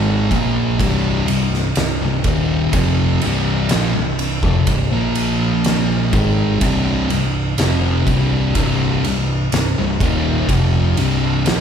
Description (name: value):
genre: stoner and doom metal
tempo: 62 BPM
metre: 4/4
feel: straight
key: C minor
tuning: A4 = 440 Hz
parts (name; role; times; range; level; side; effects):
- thick fuzz guitar; riff; 0.0-11.6 s; C2 to Bb3; -18 LUFS; equal; distortion
- fingered electric bass; bass; 0.0-11.6 s; C1 to Bb1; -20 LUFS; equal; overdrive
- oversized low-tuned drum kit; drums; 0.3-11.6 s; kick drum, ride cymbal, snare drum; -21 LUFS; equal; none
room: light reverb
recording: band playing live in one room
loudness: -15 LUFS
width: side -8 dB against mid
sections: 0.0-11.6 A section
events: none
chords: 0.0 Cm; 4.9 Bb5; 6.1 Cm